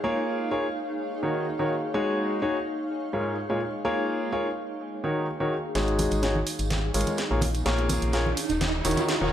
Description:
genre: piano house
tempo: 126 BPM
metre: 4/4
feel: swing 53% on 16ths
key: Eb minor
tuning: A4 = 438 Hz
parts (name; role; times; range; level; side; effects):
- clear concert grand piano; riff; 0.0-9.3 s; Ab2 to Db5; -27 LUFS; left 1 dB; low-pass filter, dub echo
- granular cloud pad; texture; 0.0-9.3 s; Bb3 to F5; -32 LUFS; equal; built-in reverb
- organ-like FM bass; bass; 5.8-9.3 s; Eb1 to Bb1; -28 LUFS; equal; tube saturation
- house drum kit; drums; 5.8-9.2 s; hi-hat, snare drum; -31 LUFS; equal; overdrive, high-pass filter on hats, high-pass filter on snare, high-pass filter on room
- tambourine and congas; percussion; 5.8-9.2 s; none; -33 LUFS; right 2 dB; none
- riser; sound effects; 6.8-9.3 s; none; -34 LUFS; right 2 dB; none
room: moderate digital room reverb, RT60 1.2 s, studio ambience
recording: dark, warm production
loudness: -24 LUFS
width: side -10 dB against mid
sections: 0.0-5.8 A section; 5.8-9.3 B section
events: build-up 5.8-9.3; drum fill 5.8-9.3; filter sweep on grand piano 5.8-9.3; riser 6.8-9.3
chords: 0.0 Bbm7; 0.8 Ebm7; 1.9 Ab7sus4; 2.7 Db6/Ab; 3.6 Bbm7; 4.6 Ebm7; 5.8 Ab7sus4; 6.5 Db6/Ab; 7.4 Bbm7; 8.4 Ebm7

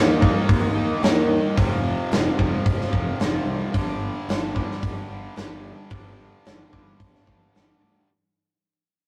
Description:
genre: hard rock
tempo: 110 BPM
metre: 4/4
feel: straight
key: G minor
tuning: A4 = 440 Hz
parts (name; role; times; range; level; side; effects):
- tight distorted guitar; riff; 0.0-8.1 s; F2 to Eb4; -35 LUFS; equal; distortion
- tight distorted guitar; riff; 0.0-8.1 s; F2 to Eb4; -32 LUFS; equal; distortion
- fuzz fingered electric bass; bass; 0.0-8.0 s; F1 to Eb2; -30 LUFS; equal; overdrive
- big rock drum kit; drums; 0.2-7.7 s; hi-hat, kick drum, snare drum; -24 LUFS; equal; none
room: moderate booth ambience, RT60 0.3 s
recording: rough rehearsal-room recording, vinyl crackle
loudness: -22 LUFS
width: mono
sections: 0.0-8.1 A section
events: fade-out 0.0-8.1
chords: 0.0 Eb5; 1.6 F5; 3.7 G5

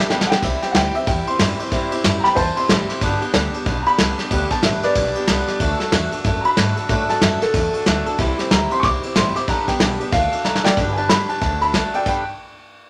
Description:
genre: rockabilly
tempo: 186 BPM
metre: 4/4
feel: swing 62% on 8ths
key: G major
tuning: A4 = 440 Hz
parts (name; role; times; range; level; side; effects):
- warm upright piano; melody; 0.0-12.3 s; A4 to D6; -24 LUFS; equal; none
- picked swing-style acoustic guitar; accompaniment; 0.0-12.2 s; G2 to B4; -26 LUFS; equal; none
- soft brush drum kit; drums; 0.0-12.2 s; crash cymbal, kick drum, ride cymbal, snare drum; -22 LUFS; equal; none
- upright bass; bass; 0.1-12.2 s; G1 to A2; -29 LUFS; equal; none
room: light reverb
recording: none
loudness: -19 LUFS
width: mono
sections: 0.0-10.8 A section; 10.8-12.1 B section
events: drum fill 0.0-0.4, 10.4-10.8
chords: 0.4 C; 3.0 G; 5.6 D; 8.2 C; 9.5 G; 10.1 D; 10.8 G; 11.4 D; 12.1 G

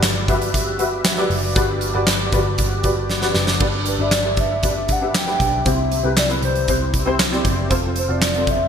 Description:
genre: piano-driven pop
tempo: 117 BPM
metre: 4/4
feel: straight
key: G major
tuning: A4 = 440 Hz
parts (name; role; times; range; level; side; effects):
- warm upright piano; accompaniment; 0.0-8.7 s; G2 to E5; -22 LUFS; equal; ensemble chorus
- vintage muted picked electric bass; bass; 0.0-8.7 s; F1 to C2; -24 LUFS; equal; none
- huge arena drum kit; drums; 0.0-8.6 s; crash cymbal, handclaps, hi-hat, kick drum, snare drum; -20 LUFS; equal; gated reverb
- hollow clarinet-like synth lead; melody; 3.9-8.7 s; B4 to G5; -23 LUFS; left 1 dB; chorus, phaser
room: moderate plate reverb, RT60 2.9 s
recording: bright 1980s-style digital production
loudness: -16 LUFS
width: side -7 dB against mid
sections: 0.0-3.6 A section; 3.6-8.7 B section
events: drum fill 3.1-3.6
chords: 0.0 Gmaj7; 3.6 G; 5.7 C; 7.7 F

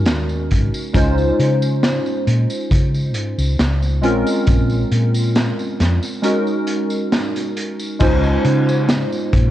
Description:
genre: vaporwave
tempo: 68 BPM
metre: 4/4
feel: straight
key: Db major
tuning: A4 = 440 Hz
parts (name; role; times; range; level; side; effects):
- warbly lo-fi synth keys; accompaniment; 0.0-9.5 s; Ab3 to C5; -20 LUFS; equal; analog chorus, vintage 12-bit sampler grit, analog delay
- hollow-body short-scale fingered electric bass; bass; 0.0-9.5 s; Ab1 to Db3; -18 LUFS; equal; none
- raw garage drum kit; drums; 0.1-9.5 s; crash cymbal, hi-hat, snare drum, tambourine; -24 LUFS; equal; vintage 12-bit sampler grit
- kick drum; drums; 0.5-9.5 s; none; -17 LUFS; equal; vintage 12-bit sampler grit
room: light reverb, studio reverb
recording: cassette tape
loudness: -15 LUFS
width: side -13 dB against mid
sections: 0.0-8.0 A section; 8.0-9.5 B section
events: break 6.2-8.0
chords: 0.0 Ab9sus4; 0.9 Dbmaj9; 4.0 Bbm9; 6.2 Ab9sus4; 8.0 Dbmaj9

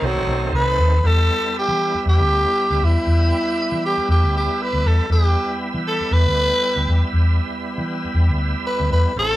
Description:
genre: straight-eighth soul blues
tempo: 118 BPM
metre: 4/4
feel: swing 56% on 16ths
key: E minor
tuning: A4 = 444 Hz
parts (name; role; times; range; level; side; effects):
- growling tenor saxophone; melody; 0.0-9.4 s; F#3 to B4; -20 LUFS; equal; none
- bright tonewheel organ; accompaniment; 0.0-9.4 s; D#3 to E4; -26 LUFS; right 2 dB; slow rotary speaker, overdrive, chorus vibrato
- vintage muted fingered electric bass; bass; 0.0-9.4 s; A1 to E3; -18 LUFS; equal; none
room: moderate studio reverb, RT60 0.6 s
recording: band playing live in one room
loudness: -16 LUFS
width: side -16 dB against mid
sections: 0.0-1.0 A section; 1.0-9.4 B section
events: tenor saxophone solo 0.0-1.0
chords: 0.0 B7b9; 1.0 Em

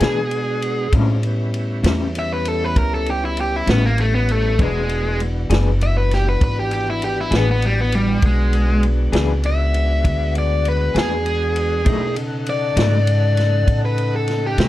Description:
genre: slow blues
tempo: 66 BPM (dotted quarters)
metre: 12/8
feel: straight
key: E mixolydian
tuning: A4 = 440 Hz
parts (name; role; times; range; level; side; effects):
- overdriven electric guitar; melody; 0.0-14.7 s; G3 to E5; -21 LUFS; left 1 dB; none
- electric guitar through a small old amp; accompaniment; 0.0-14.7 s; A2 to G#4; -24 LUFS; left 5 dB; tremolo
- tonewheel organ; sustained chords; 0.0-14.7 s; C#3 to G5; -27 LUFS; right 1 dB; chorus vibrato, slow rotary speaker
- upright bass; bass; 0.0-14.7 s; E1 to B2; -19 LUFS; equal; none
- vintage drum kit; drums; 0.0-14.7 s; kick drum, ride cymbal, snare drum; -23 LUFS; equal; none
room: light reverb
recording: dark, warm production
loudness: -16 LUFS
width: side -15 dB against mid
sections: 0.0-14.7 A section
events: overdriven electric guitar solo 0.0-14.7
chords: 0.0 E7; 0.9 A7; 4.6 E7; 11.9 B7

